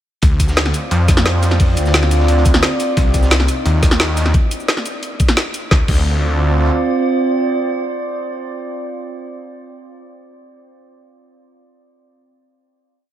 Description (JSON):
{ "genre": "dark technical drum and bass", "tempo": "175 BPM", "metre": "4/4", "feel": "straight", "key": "D phrygian", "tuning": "A4 = 441 Hz", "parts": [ { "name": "metallic inharmonic drone", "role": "sustained chords", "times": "0.7-9.2 s", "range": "C4 to D5", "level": "-21 LUFS", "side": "right 2 dB", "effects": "chorus, built-in reverb, sidechain pumping" }, { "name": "snarling distorted saw bass", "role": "bass", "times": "0.2-6.7 s", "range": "C2 to F2", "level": "-15 LUFS", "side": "equal", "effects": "distortion, sidechain pumping" }, { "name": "crunchy breakbeat drum kit", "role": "drums", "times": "0.2-4.3 s", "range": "hi-hat, snare drum", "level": "-30 LUFS", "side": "equal", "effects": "none" }, { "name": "drum and bass drum kit", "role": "drums", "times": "0.2-6.0 s", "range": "cabasa, crash cymbal, hi-hat, snare drum", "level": "-18 LUFS", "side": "equal", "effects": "overdrive, studio reverb" }, { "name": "electronic kick drum", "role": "drums", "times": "0.2-6.0 s", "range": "none", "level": "-14 LUFS", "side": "equal", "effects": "overdrive, studio reverb" } ], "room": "moderate cathedral reverb, RT60 5.5 s", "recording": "dreamy mix soaked in reverb", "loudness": "-13 LUFS", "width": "side -12 dB against mid", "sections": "0.2-5.7 drop; 5.7-8.5 final chord", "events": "drop 0.2-5.7", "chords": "0.2 Dm7; 3.0 Cmadd9; 5.7 Dm7" }